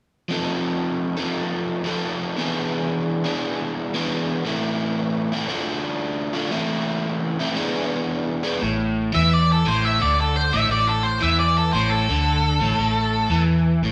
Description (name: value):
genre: rock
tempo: 115 BPM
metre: 4/4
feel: swing 67% on 8ths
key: A minor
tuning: A4 = 440 Hz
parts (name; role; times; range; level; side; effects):
- crunchy overdriven guitar; riff; 0.3-13.9 s; A2 to A4; -24 LUFS; equal; none
- vintage muted fingered electric bass; bass; 8.6-13.9 s; A1 to E2; -26 LUFS; equal; none
- octave-fuzz lead guitar; melody; 9.1-13.4 s; A4 to E5; -23 LUFS; equal; distortion
room: wet stone room reverb, RT60 1.3 s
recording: band playing live in one room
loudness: -22 LUFS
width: mono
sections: 0.3-8.6 A section; 8.6-13.9 B section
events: none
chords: 0.3 F7; 2.4 E7; 4.5 Am; 5.5 Dm; 6.5 Am; 7.6 E7; 8.6 A5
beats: | 0.30 0.82 1.34 1.86 | 2.38 2.90 3.42 3.94 | 4.46 4.98 5.50 6.02 | 6.54 7.06 7.58 8.10 | 8.62 9.14 9.66 10.18 | 10.70 11.22 11.74 12.26 | 12.78 13.30 13.82